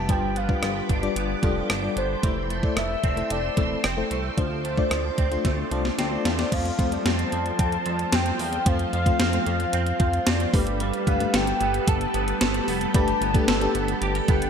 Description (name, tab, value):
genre	1980s-style pop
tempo	112 BPM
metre	4/4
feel	straight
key	unclear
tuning	A4 = 440 Hz
part	warm velvety synth lead	melody	0.0-14.5 s	C5 to A5	-29 LUFS	left 1 dB	chorus, ping-pong delay
part	FM electric piano with tremolo	accompaniment	0.0-14.5 s	C3 to A5	-29 LUFS	left 5 dB	none
part	string machine, full ensemble	sustained chords	0.0-14.5 s	F3 to E6	-32 LUFS	right 1 dB	ensemble chorus
part	direct-recorded clean electric guitar	riff	0.0-14.5 s	E3 to A4	-32 LUFS	right 6 dB	ensemble chorus, ping-pong delay
part	chorused synth bass	bass	0.0-14.5 s	E1 to F2	-29 LUFS	right 1 dB	none
part	gated 80s digital drum machine	drums	0.1-14.5 s	crash cymbal, hi-hat, kick drum, rim click, snare drum	-25 LUFS	equal	gated reverb, gated reverb snare, overdrive
room	moderate plate reverb, RT60 2.6 s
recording	bright 1980s-style digital production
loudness	-21 LUFS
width	side -7 dB against mid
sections	0.0-6.5 A section; 6.5-14.5 B section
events	drum fill 5.4-6.5; FM electric piano fill 5.4-6.5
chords	0.1 G7; 2.2 Fmaj7; 4.4 Dm7; 6.5 F; 10.5 Gadd9